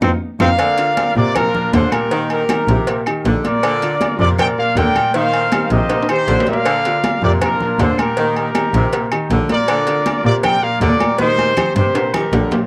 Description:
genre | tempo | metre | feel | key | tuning
latin, salsa | 159 BPM | 4/4 | straight | Bb major | A4 = 440 Hz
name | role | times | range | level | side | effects
bright trombone | melody | 0.0-0.5 s | C4 | -26 LUFS | equal | cassette tape, analog delay
clear grand piano | accompaniment | 0.0-12.7 s | Bb2 to Bb4 | -26 LUFS | equal | cassette tape
dark double bass | bass | 0.0-12.4 s | Bb1 to Bb2 | -20 LUFS | equal | none
bongos and cowbell | percussion | 0.0-12.5 s | none | -28 LUFS | equal | none
claves | percussion | 0.0-12.3 s | none | -34 LUFS | equal | none
congas | percussion | 0.0-12.6 s | none | -27 LUFS | equal | none
timbales and agogo bells | percussion | 0.0-12.7 s | none | -25 LUFS | equal | none
bright trumpet section | melody | 0.4-12.7 s | D4 to G5 | -20 LUFS | equal | cassette tape
clear saxophone section | second line | 0.6-12.5 s | C3 to Eb3 | -25 LUFS | equal | cassette tape, analog delay
room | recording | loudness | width
light reverb | home recording on cassette | -16 LUFS | mono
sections
0.6-12.7 A section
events
band accent 0.0-0.6; drum fill 0.0-0.6, 5.9-6.7, 11.2-12.7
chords
0.0 F5; 0.6 Bb; 2.1 Eb6; 3.6 Bb; 5.1 Eb6; 6.7 Bb; 11.2 Eb6

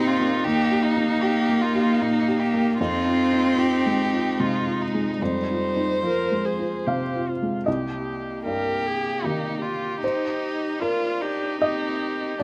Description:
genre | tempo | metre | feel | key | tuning
neoclassical piano and strings | 76 BPM | 3/4 | rubato | unclear | A4 = 438 Hz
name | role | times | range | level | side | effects
rich violin | melody | 0.0-12.4 s | Eb4 to C5 | -30 LUFS | equal | slapback echo
rich cello | second line | 0.0-12.4 s | F3 to Eb4 | -28 LUFS | equal | slapback echo
felt-muted upright piano | accompaniment | 0.0-12.4 s | C2 to F5 | -29 LUFS | equal | none
rich viola | accompaniment | 0.0-12.4 s | Eb4 to Bb4 | -32 LUFS | equal | none
room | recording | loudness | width
light reverb | recorded outdoors, with no room sound | -24 LUFS | mono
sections
0.0-7.7 A section; 7.7-12.4 B section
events
none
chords
0.0 Eb; 2.8 Fm7; 7.7 Cm7

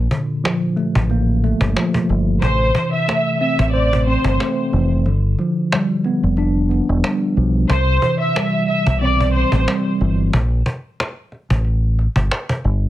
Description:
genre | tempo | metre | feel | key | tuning
hip hop, boom-bap hip-hop | 91 BPM | 4/4 | swing 55% on 16ths | unclear | A4 = 440 Hz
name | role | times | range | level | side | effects
mellow tine electric piano | accompaniment | 0.0-10.4 s | Bb2 to C5 | -19 LUFS | equal | medium stereo tremolo, cassette tape, high-pass filter, low-pass filter
deep dub fingered electric bass | bass | 0.0-12.9 s | E1 to C2 | -17 LUFS | equal | none
cajon | drums | 0.1-12.7 s | none | -21 LUFS | equal | none
clear symphonic violin section | melody | 2.4-9.6 s | C5 to E5 | -20 LUFS | equal | high-pass filter, low-pass filter, ping-pong delay
room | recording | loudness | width
light reverb | heavily compressed radio sound | -15 LUFS | side -14 dB against mid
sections
0.0-12.9 A section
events
kick muted 5.1-7.7; break 10.3-12.9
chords
0.0 Bbmaj7; 2.4 Am; 5.1 G7; 7.7 Cmaj7; 10.3 Gmadd9

